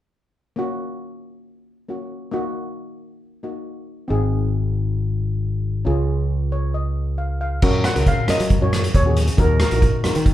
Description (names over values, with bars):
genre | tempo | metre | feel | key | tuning
calypso | 136 BPM | 4/4 | straight | F# major | A4 = 440 Hz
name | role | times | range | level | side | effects
steel pan | accompaniment | 0.6-10.2 s | A#3 to E#5 | -27 LUFS | equal | none
modern bright fingered electric bass | bass | 4.1-10.3 s | G#1 to F#3 | -20 LUFS | equal | none
vintage drum kit | drums | 7.6-10.3 s | crash cymbal, hi-hat, kick drum, rim click | -18 LUFS | equal | none
steel pan | melody | 7.8-10.0 s | A#4 to F#5 | -24 LUFS | equal | none
congas | percussion | 8.3-10.2 s | none | -30 LUFS | right 1 dB | none
room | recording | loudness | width
light reverb | band playing live in one room | -18 LUFS | side -13 dB against mid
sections
0.6-7.6 A section; 7.6-10.3 B section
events
steel pan fill 6.3-7.6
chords
0.6 F#; 2.3 D#m; 4.1 G#; 5.9 C#add9; 7.6 F#6; 9.4 D#m